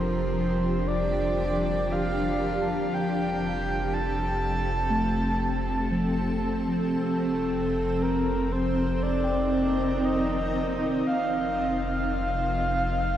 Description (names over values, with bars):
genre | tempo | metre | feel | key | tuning
ambient | 59 BPM | 4/4 | straight | F mixolydian | A4 = 441 Hz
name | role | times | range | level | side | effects
breathy flute-like synth lead | melody | 0.0-13.2 s | A4 to A5 | -29 LUFS | equal | lush chorus, tape echo
granular cloud pad | sustained chords | 0.0-13.2 s | F3 to Bb4 | -28 LUFS | equal | built-in reverb
muted felt-like synth keys | arpeggios | 0.0-13.2 s | F3 to A5 | -34 LUFS | equal | chorus, tape echo
warm sub bass | bass | 0.0-13.2 s | F1 | -32 LUFS | equal | none
bowed-like drone | drone | 0.1-13.2 s | F3 to C4 | -38 LUFS | right 2 dB | built-in reverb
room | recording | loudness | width
wet huge ambient reverb, RT60 7.9 s | dreamy mix soaked in reverb | -24 LUFS | side -11 dB against mid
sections
0.0-13.2 A section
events
none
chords
0.0 Gm/F; 2.9 Fadd9; 7.0 Cm7/F; 11.1 Fadd9